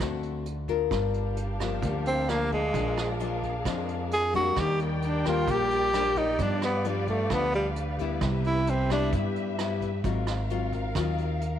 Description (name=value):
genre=bossa nova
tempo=131 BPM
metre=4/4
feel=straight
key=G minor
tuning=A4 = 442 Hz
part: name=nylon-string guitar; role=accompaniment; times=0.0-11.6 s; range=F2 to Bb4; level=-32 LUFS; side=left 10 dB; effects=none
part: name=upright bass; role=bass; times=0.0-11.6 s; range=G1 to G2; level=-30 LUFS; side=right 1 dB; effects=none
part: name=vintage brush drum kit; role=drums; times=0.0-11.5 s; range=hi-hat, kick drum, rim click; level=-37 LUFS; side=right 5 dB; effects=none
part: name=muted symphonic string section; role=sustained chords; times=0.9-11.6 s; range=D4 to G5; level=-35 LUFS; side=left 1 dB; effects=none
part: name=breathy tenor saxophone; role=melody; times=2.1-9.1 s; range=G3 to Ab4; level=-27 LUFS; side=right 1 dB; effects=none
room=light reverb, studio ambience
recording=1960s-style stereo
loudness=-25 LUFS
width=side -10 dB against mid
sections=0.9-11.6 A section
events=tenor saxophone solo 0.9-11.6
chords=0.0 D7; 0.9 Gm7; 2.7 Bb7; 4.6 Ebmaj7; 6.4 G7; 8.2 Cmaj7; 10.0 Ab13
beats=0.00 0.46 | 0.91 1.37 1.83 2.28 | 2.74 3.20 3.65 4.11 | 4.57 5.02 5.48 5.93 | 6.39 6.85 7.30 7.76 | 8.22 8.67 9.13 9.59 | 10.04 10.50 10.96 11.41